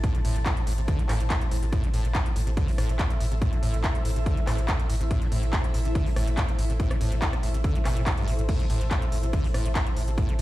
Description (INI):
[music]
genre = driving peak-time techno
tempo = 142 BPM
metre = 4/4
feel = straight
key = A minor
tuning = A4 = 440 Hz
[part]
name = acid bass, saw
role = riff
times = 0.0-10.4 s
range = G2 to A3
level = -33 LUFS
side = equal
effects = analog chorus, sidechain pumping, tape echo
[part]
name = warm sub bass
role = bass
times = 0.0-10.4 s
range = A1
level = -26 LUFS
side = equal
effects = sidechain pumping, low-pass filter
[part]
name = electronic kick drum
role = drums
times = 0.0-10.3 s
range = none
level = -26 LUFS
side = equal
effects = overdrive, studio reverb
[part]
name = techno drum kit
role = drums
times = 0.0-10.4 s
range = crash cymbal, handclaps, hi-hat, rim click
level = -33 LUFS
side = equal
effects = overdrive, sidechain pumping on hats, studio reverb, sidechain pumping on cymbals
[part]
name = granular cloud pad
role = texture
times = 0.0-10.4 s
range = E4 to A5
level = -35 LUFS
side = equal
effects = built-in reverb, sidechain pumping
[sound]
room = little or no reverb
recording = played on a big sound system in a bare room, stone room reverb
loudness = -23 LUFS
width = side -16 dB against mid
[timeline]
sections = 0.0-10.4 A section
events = none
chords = 0.0 Am